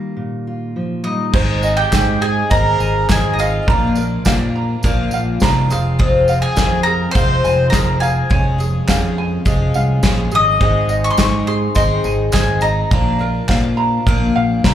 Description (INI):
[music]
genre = indie folk with a building arrangement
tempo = 104 BPM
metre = 4/4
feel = straight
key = unclear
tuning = A4 = 440 Hz
[part]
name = bowl-back mandolin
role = melody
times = 0.0-13.4 s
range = Eb5 to Eb6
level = -20 LUFS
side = left 1 dB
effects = slapback echo
[part]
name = fingerpicked steel-string acoustic guitar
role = accompaniment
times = 0.0-1.3 s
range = Bb2 to G4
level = -23 LUFS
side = equal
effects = slapback echo
[part]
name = warm trumpet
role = second line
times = 1.0-11.0 s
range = Eb4 to Eb5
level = -24 LUFS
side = left 1 dB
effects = slapback echo
[part]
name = picked twelve-string acoustic guitar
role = accompaniment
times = 1.3-14.7 s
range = F2 to Ab4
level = -22 LUFS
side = left 5 dB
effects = slapback echo
[part]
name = warm baby grand piano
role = accompaniment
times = 1.3-12.9 s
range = F1 to F5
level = -29 LUFS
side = right 1 dB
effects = slapback echo
[part]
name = ukulele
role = arpeggios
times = 1.3-14.7 s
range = Ab4 to Bb5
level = -23 LUFS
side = right 4 dB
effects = slapback echo
[part]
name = fingered electric bass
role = bass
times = 1.3-14.7 s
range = F1 to Bb2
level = -18 LUFS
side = right 1 dB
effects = none
[part]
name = unplugged drum kit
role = drums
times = 1.3-14.7 s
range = crash cymbal, kick drum, snare drum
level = -17 LUFS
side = equal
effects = none
[part]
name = tambourine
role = percussion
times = 1.6-12.8 s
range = none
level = -34 LUFS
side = right 4 dB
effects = none
[part]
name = group handclap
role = percussion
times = 1.9-14.7 s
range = none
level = -29 LUFS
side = right 1 dB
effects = slapback echo
[sound]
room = studio reverb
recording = live gig heard through the venue's PA, club reverb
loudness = -14 LUFS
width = side -10 dB against mid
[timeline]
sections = 0.0-1.3 A section; 1.3-14.7 B section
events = none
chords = 0.0 Ebadd9; 1.3 Ab; 3.7 Bb; 5.7 Fm; 8.3 Db/F; 10.6 Ab; 12.9 Bb